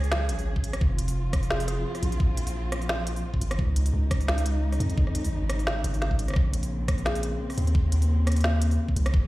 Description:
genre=half-time drum and bass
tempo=173 BPM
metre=4/4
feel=swing 55% on 16ths, half-time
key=Bb minor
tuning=A4 = 440 Hz
part: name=warm studio cello section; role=sustained chords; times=0.0-9.3 s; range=Db3 to Ab4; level=-35 LUFS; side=left 1 dB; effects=sidechain pumping
part: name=long sustained 808-style bass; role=bass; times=0.0-9.3 s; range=F1 to F2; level=-26 LUFS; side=equal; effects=tube saturation
part: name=organic electronic drum kit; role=drums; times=0.0-9.1 s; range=hi-hat, rim click, snare drum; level=-32 LUFS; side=right 1 dB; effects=overdrive
part: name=electronic kick drum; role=drums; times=0.6-9.2 s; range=none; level=-24 LUFS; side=equal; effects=none
part: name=mallet-like synth pluck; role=melody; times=1.5-1.9, 7.1-7.5 s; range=Ab4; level=-39 LUFS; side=left 2 dB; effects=chorus, phaser, dub echo
room=light reverb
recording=played on a big sound system in a bare room, large studio reverb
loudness=-23 LUFS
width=side -18 dB against mid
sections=0.0-9.3 A section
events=none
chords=0.0 Gbsus2; 0.8 F5; 3.6 Db; 6.4 Bbmadd9

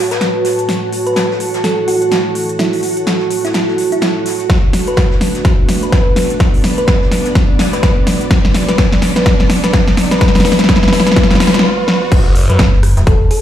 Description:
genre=bass house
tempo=126 BPM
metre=4/4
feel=swing 59% on 16ths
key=F# minor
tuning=A4 = 439 Hz
part: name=dark analog pad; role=sustained chords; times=0.0-13.4 s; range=A3 to B4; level=-24 LUFS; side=right 1 dB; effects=chorus, phaser, sidechain pumping
part: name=ethereal airy pad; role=texture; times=0.0-13.4 s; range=B3 to A5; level=-20 LUFS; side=right 2 dB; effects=ensemble chorus, built-in reverb, sidechain pumping
part: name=thumb-piano-like synth pluck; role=melody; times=0.1-13.4 s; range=E4 to B4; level=-19 LUFS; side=left 1 dB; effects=chorus, ping-pong delay
part: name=big-room dance drum kit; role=drums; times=0.1-13.4 s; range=crash cymbal, hi-hat, ride cymbal, rim click, snare drum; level=-15 LUFS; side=equal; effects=overdrive
part: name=jazz brush drum kit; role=drums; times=0.1-13.4 s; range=hi-hat, snare drum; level=-27 LUFS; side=left 1 dB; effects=sidechain pumping on hats, high-pass filter on hats, high-pass filter on snare, high-pass filter on room
part: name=electronic kick drum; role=drums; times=4.5-13.2 s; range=none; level=-12 LUFS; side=equal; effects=overdrive
part: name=riser and impact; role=sound effects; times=6.5-13.4 s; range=none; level=-25 LUFS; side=right 1 dB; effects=none
part: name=phased detuned saw bass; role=bass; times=12.1-12.6 s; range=F#1 to F#2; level=-13 LUFS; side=equal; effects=phaser, overdrive, sidechain pumping
part: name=metallic FM bass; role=bass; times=12.6-13.3 s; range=E1 to F#1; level=-12 LUFS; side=equal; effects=overdrive, sidechain pumping
room=moderate digital room reverb, RT60 0.9 s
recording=played on a big sound system in a bare room, large studio reverb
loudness=-10 LUFS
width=side -11 dB against mid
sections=0.0-12.1 A section; 12.1-13.4 B section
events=build-up 0.0-12.1; drum fill 0.0-11.6, 11.9; riser 6.5-12.1; break 11.6-12.1; drop 12.1-13.4; impact 12.1-13.4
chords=0.0 F#m; 4.5 Bm7; 12.1 F#m

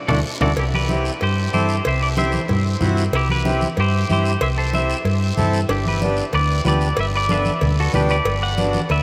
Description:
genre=latin, cumbia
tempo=187 BPM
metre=4/4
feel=straight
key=unclear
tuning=A4 = 436 Hz
part: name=clean electric guitar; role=melody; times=0.1-9.0 s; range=D4 to F#5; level=-26 LUFS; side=equal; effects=spring reverb
part: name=accordion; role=accompaniment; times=0.1-8.8 s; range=B3 to A4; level=-27 LUFS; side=equal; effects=none
part: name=hollow-body short-scale fingered electric bass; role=bass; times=0.1-9.0 s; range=G1 to G2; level=-23 LUFS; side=equal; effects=none
part: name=congas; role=percussion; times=0.1-9.0 s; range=none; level=-29 LUFS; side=equal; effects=none
part: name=guiro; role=percussion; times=0.1-9.0 s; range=none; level=-36 LUFS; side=equal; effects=none
part: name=timbales and cowbell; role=percussion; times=0.1-9.0 s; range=none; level=-32 LUFS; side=equal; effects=none
room=moderate huge ambient reverb, RT60 7.4 s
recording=in a vast, echoing space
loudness=-19 LUFS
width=mono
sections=0.6-9.0 A section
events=drum fill 0.0-0.6; band accent 0.0-0.6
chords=0.0 Dadd9; 0.6 C; 5.7 G

